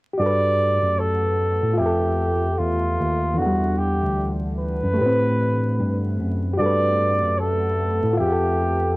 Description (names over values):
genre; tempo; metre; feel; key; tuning
lo-fi hip hop; 75 BPM; 4/4; swing 58% on 16ths; G major; A4 = 440 Hz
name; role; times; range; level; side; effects
reed electric piano; accompaniment; 0.1-9.0 s; E3 to F#5; -25 LUFS; left 1 dB; cassette tape, low-pass filter
breathy flugelhorn; melody; 0.2-9.0 s; F4 to D5; -22 LUFS; right 1 dB; low-pass filter
deep dark ambient pad; sustained chords; 0.8-9.0 s; E3 to F#5; -32 LUFS; equal; chorus, built-in reverb, low-pass filter, cassette tape
tine electric piano; bass; 0.2-9.0 s; D2 to A2; -23 LUFS; equal; fast stereo tremolo
room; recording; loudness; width
moderate booth ambience, RT60 0.3 s; home recording on cassette, vinyl crackle; -19 LUFS; side -21 dB against mid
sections
0.2-9.0 A section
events
none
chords
0.2 Gmaj9; 1.8 Fmaj9; 3.4 Em9; 5.0 Am9; 6.6 Gmaj9; 8.2 Fmaj9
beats
| 0.18 0.98 1.78 2.58 | 3.38 4.18 4.98 5.78 | 6.58 7.38 8.18